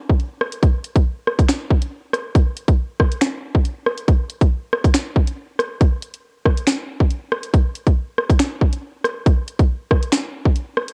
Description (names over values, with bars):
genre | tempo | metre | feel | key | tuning
hip hop | 139 BPM | 4/4 | half-time | none | none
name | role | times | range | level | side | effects
drill drum kit | drums | 0.1-10.9 s | finger snaps, hi-hat, kick drum, rim click, snare drum | -18 LUFS | equal | cassette tape
room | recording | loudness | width
light reverb | home recording on cassette | -19 LUFS | mono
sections
0.0-4.1 A section; 4.1-10.9 A section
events
none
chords
none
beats
0.20 | 0.63 1.06 1.49 1.92 | 2.35 2.79 3.22 3.65 | 4.08 4.51 4.94 5.38 | 5.81 6.24 6.67 7.10 | 7.53 7.97 8.40 8.83 | 9.26 9.69 10.12 10.56